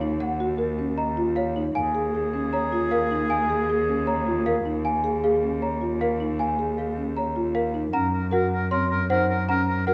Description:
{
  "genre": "classical, minimalist pattern music",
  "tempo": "155 BPM",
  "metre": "4/4",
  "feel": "straight",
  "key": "unclear",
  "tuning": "A4 = 440 Hz",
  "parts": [
    { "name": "folk marimba with soft mallets", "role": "melody", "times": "0.0-9.9 s", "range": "Ab4 to Gb5", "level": "-30 LUFS", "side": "equal", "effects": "none" },
    { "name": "celesta", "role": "arpeggios", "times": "0.0-9.9 s", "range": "F5 to C6", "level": "-31 LUFS", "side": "equal", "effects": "none" },
    { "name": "marimba with soft mallets", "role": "arpeggios", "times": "0.0-9.9 s", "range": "C4 to Ab4", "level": "-31 LUFS", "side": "equal", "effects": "none" },
    { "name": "warm cello", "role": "bass", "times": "0.0-9.9 s", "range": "Eb2 to Gb2", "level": "-31 LUFS", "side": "equal", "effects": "none" },
    { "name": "clear oboe", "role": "second line", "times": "1.8-4.6, 7.9-9.9 s", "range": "Ab4 to Bb4", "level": "-32 LUFS", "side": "equal", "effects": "none" }
  ],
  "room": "moderate scoring stage reverb, RT60 1.8 s",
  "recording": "worn, warbling old tape, cassette tape, warbly pitch drift",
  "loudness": "-24 LUFS",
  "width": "mono",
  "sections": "0.0-7.9 A section; 7.9-9.9 B section",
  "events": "none",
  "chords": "0.0 Ebm7; 1.8 Bbm7/Eb; 7.9 Gb6",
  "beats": "| 0.20 0.59 0.98 1.36 | 1.75 2.14 2.52 2.91 | 3.30 3.69 4.07 4.46 | 4.85 5.23 5.62 6.01 | 6.39 6.78 7.17 7.56 | 7.94 8.33 8.72 9.11 | 9.49 9.88"
}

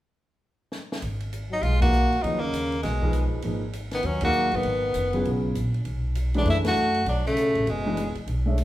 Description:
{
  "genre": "modal jazz",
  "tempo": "199 BPM",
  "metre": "4/4",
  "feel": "swing 61% on 8ths",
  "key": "G# dorian",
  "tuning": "A4 = 440 Hz",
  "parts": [
    { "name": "compact cocktail drum kit", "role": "drums", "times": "0.7-8.6 s", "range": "hi-hat, kick drum, ride cymbal, snare drum", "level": "-37 LUFS", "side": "equal", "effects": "none" },
    { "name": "upright bass", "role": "bass", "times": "1.0-8.6 s", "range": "F#1 to F#2", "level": "-26 LUFS", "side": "equal", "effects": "none" },
    { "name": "edgy tenor saxophone", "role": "melody", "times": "1.5-8.2 s", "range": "G#3 to F#4", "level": "-25 LUFS", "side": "equal", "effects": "none" },
    { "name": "warm trombone", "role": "second line", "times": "1.5-8.2 s", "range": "B2 to A#3", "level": "-30 LUFS", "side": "left 2 dB", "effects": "none" },
    { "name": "warm grand piano", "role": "accompaniment", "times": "1.8-8.6 s", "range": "A#2 to E5", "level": "-30 LUFS", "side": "equal", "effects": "none" }
  ],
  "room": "wet large studio reverb, RT60 1.1 s",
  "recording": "band playing live in one room",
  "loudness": "-22 LUFS",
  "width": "side -15 dB against mid",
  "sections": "0.0-1.0 A section; 1.0-8.6 B section",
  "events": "drum fill 0.7-1.0; band accent 1.8, 4.2, 6.6",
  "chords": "0.0 N.C.; 1.0 G#m9; 5.9 Bm11",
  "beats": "0.12 0.42 0.72 | 1.02 1.32 1.62 1.93 | 2.23 2.53 2.83 3.13 | 3.44 3.74 4.04 4.34 | 4.64 4.95 5.25 5.55 | 5.85 6.16 6.46 6.76 | 7.06 7.36 7.67 7.97 | 8.27 8.57"
}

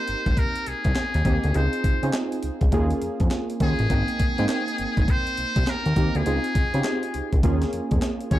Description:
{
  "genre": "R&B, new jack swing",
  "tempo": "102 BPM",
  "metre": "4/4",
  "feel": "swing 63% on 16ths",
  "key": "Ab major",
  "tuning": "A4 = 438 Hz",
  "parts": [
    { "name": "trumpet with metal mute", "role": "melody", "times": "0.0-8.4 s", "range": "Ab4 to Db5", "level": "-28 LUFS", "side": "left 1 dB", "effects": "digital delay" },
    { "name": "warm analog keys", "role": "accompaniment", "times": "0.0-8.4 s", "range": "Bb3 to G5", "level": "-28 LUFS", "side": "right 2 dB", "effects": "chorus" },
    { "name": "fat analog bass", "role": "bass", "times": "0.1-8.4 s", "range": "Ab1 to Db3", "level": "-24 LUFS", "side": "equal", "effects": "none" },
    { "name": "breakbeat sampler-style drum kit", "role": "drums", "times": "0.1-8.4 s", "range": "handclaps, hi-hat, kick drum, snare drum", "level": "-24 LUFS", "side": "equal", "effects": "none" }
  ],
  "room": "little or no reverb",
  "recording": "dark, warm production",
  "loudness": "-21 LUFS",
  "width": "side -14 dB against mid",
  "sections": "0.0-8.4 A section",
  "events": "none",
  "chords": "0.0 Abmaj7; 1.5 Dbmaj7; 2.7 Eb7sus4; 3.9 Abmaj7; 6.3 Dbmaj7; 7.4 Eb7sus4",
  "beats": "0.37 0.96 | 1.55 2.14 2.73 3.31 | 3.90 4.49 5.08 5.67 | 6.25 6.84 7.43 8.02"
}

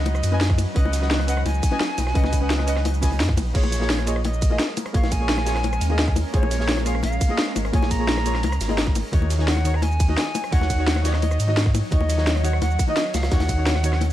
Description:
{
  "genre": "liquid drum and bass",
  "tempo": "172 BPM",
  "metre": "4/4",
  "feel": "straight",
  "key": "unclear",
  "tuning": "A4 = 440 Hz",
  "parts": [
    { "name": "silver concert flute", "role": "melody", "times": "0.0-14.1 s", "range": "C#5 to A#5", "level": "-30 LUFS", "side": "equal", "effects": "ping-pong delay" },
    { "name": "shimmering ambient pad", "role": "sustained chords", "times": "0.0-14.1 s", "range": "F#3 to C#5", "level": "-33 LUFS", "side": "equal", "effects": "chorus, built-in reverb, sidechain pumping" },
    { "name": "warm sub bass", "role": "bass", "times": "0.0-14.1 s", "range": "G#1 to G#2", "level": "-22 LUFS", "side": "equal", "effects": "none" },
    { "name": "crunchy breakbeat drum kit", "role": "drums", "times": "0.1-14.1 s", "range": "hi-hat, snare drum", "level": "-33 LUFS", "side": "equal", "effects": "high-pass filter on hats, high-pass filter on snare, high-pass filter on room" },
    { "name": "drum and bass drum kit", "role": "drums", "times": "0.1-14.1 s", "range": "crash cymbal, hi-hat, ride cymbal, rim click, shaker, snare drum", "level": "-27 LUFS", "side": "equal", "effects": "none" },
    { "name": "bongos", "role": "percussion", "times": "0.1-14.1 s", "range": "none", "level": "-31 LUFS", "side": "left 6 dB", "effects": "none" },
    { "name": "deep mellow chord stab", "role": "accompaniment", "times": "0.3-13.9 s", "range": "D#3 to G#5", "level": "-28 LUFS", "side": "equal", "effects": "lush chorus, ping-pong delay" },
    { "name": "electronic kick drum", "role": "drums", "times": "0.5-13.6 s", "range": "none", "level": "-21 LUFS", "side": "equal", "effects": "none" }
  ],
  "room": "studio reverb",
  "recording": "dark, warm production",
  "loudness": "-19 LUFS",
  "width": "side -13 dB against mid",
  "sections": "0.0-14.1 A section",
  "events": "none",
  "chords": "0.0 C#9sus4; 3.4 A#m7; 9.1 D#m7",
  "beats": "0.06 0.41 | 0.76 1.11 1.46 1.80 | 2.15 2.50 2.85 3.20 | 3.55 3.90 4.25 4.59 | 4.94 5.29 5.64 5.99 | 6.34 6.69 7.04 7.38 | 7.73 8.08 8.43 8.78 | 9.13 9.48 9.83 10.18 | 10.53 10.87 11.22 11.57 | 11.92 12.27 12.62 12.97 | 13.32 13.66 14.01"
}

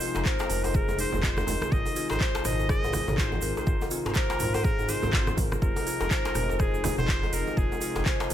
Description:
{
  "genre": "afro house",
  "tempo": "123 BPM",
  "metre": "4/4",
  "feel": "swing 59% on 16ths",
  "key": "F minor",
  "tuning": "A4 = 440 Hz",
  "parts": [
    { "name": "trumpet with straight mute", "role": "melody", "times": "0.0-8.3 s", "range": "Ab4 to Eb5", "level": "-33 LUFS", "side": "equal", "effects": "ping-pong delay" },
    { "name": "warm analog pad", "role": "sustained chords", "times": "0.0-8.3 s", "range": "C3 to F4", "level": "-37 LUFS", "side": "equal", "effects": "wide subtle chorus, sidechain pumping" },
    { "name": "kalimba", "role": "arpeggios", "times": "0.0-8.3 s", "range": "Eb4 to C5", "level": "-32 LUFS", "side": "left 3 dB", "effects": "sidechain pumping, ping-pong delay" },
    { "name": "afro-pop drum kit", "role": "drums", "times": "0.0-8.3 s", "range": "handclaps, hi-hat, rim click, toms", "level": "-33 LUFS", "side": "right 1 dB", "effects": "none" },
    { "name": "egg shaker", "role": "percussion", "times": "0.0-8.3 s", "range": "none", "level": "-42 LUFS", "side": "right 5 dB", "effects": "none" },
    { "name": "djembe", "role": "percussion", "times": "0.1-8.3 s", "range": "none", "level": "-36 LUFS", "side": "left 1 dB", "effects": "none" },
    { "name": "smooth synth bass", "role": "bass", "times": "0.2-8.3 s", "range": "F1 to Ab1", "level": "-32 LUFS", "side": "equal", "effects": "sidechain pumping" },
    { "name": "congas", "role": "percussion", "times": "0.2-8.3 s", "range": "none", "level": "-36 LUFS", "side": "right 3 dB", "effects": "none" },
    { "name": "electronic kick drum", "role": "drums", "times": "0.3-8.2 s", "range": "none", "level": "-27 LUFS", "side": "equal", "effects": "none" }
  ],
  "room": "small room reverb",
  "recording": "none",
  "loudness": "-24 LUFS",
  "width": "side -11 dB against mid",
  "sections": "0.0-8.3 A section",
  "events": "none",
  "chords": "0.0 Fm7; 1.7 Ab; 5.6 Fm7",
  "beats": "0.26 0.74 1.23 | 1.72 2.21 2.69 3.18 | 3.67 4.16 4.65 5.13 | 5.62 6.11 6.60 7.08 | 7.57 8.06"
}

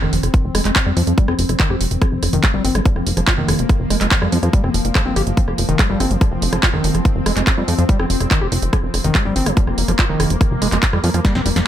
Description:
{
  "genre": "psychedelic trance",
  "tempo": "143 BPM",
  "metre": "4/4",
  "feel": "straight",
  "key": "F minor",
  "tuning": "A4 = 440 Hz",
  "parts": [
    { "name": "swarming drone", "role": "sustained chords", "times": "0.0-11.7 s", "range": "F3 to C4", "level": "-24 LUFS", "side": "left 2 dB", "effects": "built-in reverb, sidechain pumping" },
    { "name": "overdriven acid bass", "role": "riff", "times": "0.0-11.6 s", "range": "Eb3 to G4", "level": "-23 LUFS", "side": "moving between left 5 dB and right 6 dB", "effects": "auto-pan, sidechain pumping, digital delay" },
    { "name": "plucky analog bass", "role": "bass", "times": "0.0-11.6 s", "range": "F1 to F2", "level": "-19 LUFS", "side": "equal", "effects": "none" },
    { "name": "techno drum kit", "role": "drums", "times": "0.0-11.6 s", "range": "handclaps, hi-hat, rim click, snare drum", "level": "-21 LUFS", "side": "right 1 dB", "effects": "none" },
    { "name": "electronic kick drum", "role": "drums", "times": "0.3-11.3 s", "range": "none", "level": "-16 LUFS", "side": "equal", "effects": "none" }
  ],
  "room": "digital ambience",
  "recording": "none",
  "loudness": "-14 LUFS",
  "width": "side -11 dB against mid",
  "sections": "0.0-11.7 A section",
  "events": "filter sweep on acid bass 0.0-11.7; drum fill 11.2-11.7",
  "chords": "0.0 F5",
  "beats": "| 0.34 0.76 1.18 1.60 | 2.02 2.44 2.85 3.27 | 3.69 4.11 4.53 4.95 | 5.37 5.79 6.21 6.63 | 7.05 7.47 7.89 8.31 | 8.73 9.15 9.57 9.99 | 10.41 10.83 11.25 11.67"
}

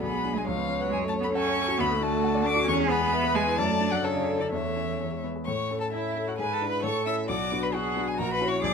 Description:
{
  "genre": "quick classical-period movement for piano quartet",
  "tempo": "134 BPM",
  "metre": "2/4",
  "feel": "rubato",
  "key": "A major",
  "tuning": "A4 = 440 Hz",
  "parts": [
    { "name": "muted violin", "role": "melody", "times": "0.0-8.7 s", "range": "C#5 to E6", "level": "-30 LUFS", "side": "left 5 dB", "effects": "none" },
    { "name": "muted cello", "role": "second line", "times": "0.0-8.7 s", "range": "C#3 to B4", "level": "-30 LUFS", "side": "right 9 dB", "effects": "none" },
    { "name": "muted violin", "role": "second line", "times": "0.0-8.7 s", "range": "E4 to E5", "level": "-33 LUFS", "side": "left 3 dB", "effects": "none" },
    { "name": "dark grand piano", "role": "accompaniment", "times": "0.0-8.7 s", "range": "A#1 to A5", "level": "-29 LUFS", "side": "left 2 dB", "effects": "none" }
  ],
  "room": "light reverb",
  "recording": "none",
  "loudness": "-24 LUFS",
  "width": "side -6 dB against mid",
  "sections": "0.0-5.5 A section; 5.5-8.7 B section",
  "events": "none",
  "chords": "0.0 G#dim/B; 0.5 C#7; 0.9 F#m; 1.8 D; 2.7 E; 3.6 D/F#; 4.5 A/E; 5.0 E; 5.5 A; 6.4 E7/G#; 6.8 A; 7.3 Bm; 8.2 F#7/A#",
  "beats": "| 0.03 0.47 | 0.92 1.36 | 1.80 2.23 | 2.68 3.13 | 3.58 4.04 | 4.52 5.00 | 5.47 5.92 | 6.38 6.83 | 7.29 7.74 | 8.18 8.62"
}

